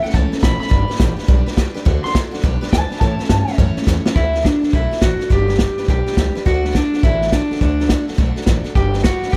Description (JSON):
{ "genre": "rockabilly", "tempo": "209 BPM", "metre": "4/4", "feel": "swing 63% on 8ths", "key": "D major", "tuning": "A4 = 440 Hz", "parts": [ { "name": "electric guitar at the edge of break-up", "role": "melody", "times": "0.0-9.4 s", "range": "D4 to C6", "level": "-23 LUFS", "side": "equal", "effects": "tape echo" }, { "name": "picked steel-string acoustic guitar", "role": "accompaniment", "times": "0.0-9.4 s", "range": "A2 to C#5", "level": "-28 LUFS", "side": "equal", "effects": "none" }, { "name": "upright bass", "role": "bass", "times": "0.0-9.4 s", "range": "G1 to A2", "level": "-22 LUFS", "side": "equal", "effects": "none" }, { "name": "vintage drum kit", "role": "drums", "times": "0.0-9.4 s", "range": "hi-hat, kick drum, snare drum", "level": "-20 LUFS", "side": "equal", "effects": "none" } ], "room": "small room reverb", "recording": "none", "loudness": "-17 LUFS", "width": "mono", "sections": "0.0-4.2 A section; 4.2-9.4 B section", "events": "clean electric guitar solo 0.0-4.2; drum fill 3.9", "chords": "0.0 A; 0.7 G; 1.9 D; 2.4 G; 3.0 A; 4.2 D; 5.3 G; 6.5 D; 8.8 G" }